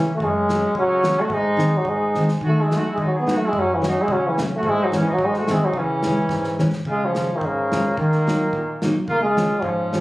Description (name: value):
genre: alpine folk, alpine dance band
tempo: 108 BPM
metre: 2/4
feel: swing 53% on 8ths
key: C# minor, Db major from 6.9 s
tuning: A4 = 437 Hz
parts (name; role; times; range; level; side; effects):
- clear euphonium; melody; 0.0-10.0 s; Db3 to B3; -20 LUFS; equal; none
- clear trumpet; second line; 0.0-10.0 s; Bb3 to G#4; -28 LUFS; equal; none
- fingerpicked steel-string acoustic guitar; accompaniment; 0.0-10.0 s; F#2 to D#4; -23 LUFS; equal; none
- loose indie drum kit; drums; 0.2-10.0 s; kick drum, snare drum; -30 LUFS; equal; none
room: moderate recital hall reverb, RT60 1.4 s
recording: recorded on a phone in the room, studio ambience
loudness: -18 LUFS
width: side -18 dB against mid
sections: 0.0-6.9 A section; 6.9-10.0 B section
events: drum fill 2.1, 6.3-6.9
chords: 0.2 F#m; 1.3 G#; 2.4 D#dim; 3.5 F#m; 4.6 C#m/G#; 5.2 G#; 5.7 C#m; 6.9 Db6; 8.0 Ebm; 9.1 Db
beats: | 0.21 0.75 | 1.30 1.85 | 2.41 2.97 | 3.53 4.08 | 4.63 5.18 | 5.74 6.29 | 6.86 7.42 | 7.97 8.53 | 9.08 9.63